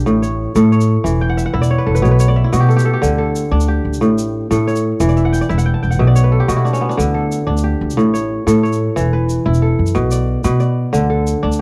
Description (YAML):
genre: west african traditional, West African string and xylophone music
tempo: 121 BPM (dotted quarters)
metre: 12/8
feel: straight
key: D major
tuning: A4 = 440 Hz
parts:
  - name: kora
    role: arpeggios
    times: 0.0-11.6 s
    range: A2 to A5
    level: -19 LUFS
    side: equal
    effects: cassette tape
  - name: upright bass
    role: bass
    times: 0.0-11.6 s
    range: E1 to B2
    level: -18 LUFS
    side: equal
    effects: none
  - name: tube shaker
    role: percussion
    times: 0.1-11.6 s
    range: none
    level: -36 LUFS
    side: equal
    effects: none
room: studio reverb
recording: home recording on cassette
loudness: -15 LUFS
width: mono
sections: 0.0-11.6 A section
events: kora fill 1.2-3.0, 5.1-7.0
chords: 0.1 A; 1.0 Em13; 2.0 Bm11; 3.0 D5; 4.0 A; 5.0 Em11; 6.0 Bm11; 7.0 D5; 8.0 A; 9.0 E5; 9.9 Bm; 10.9 D5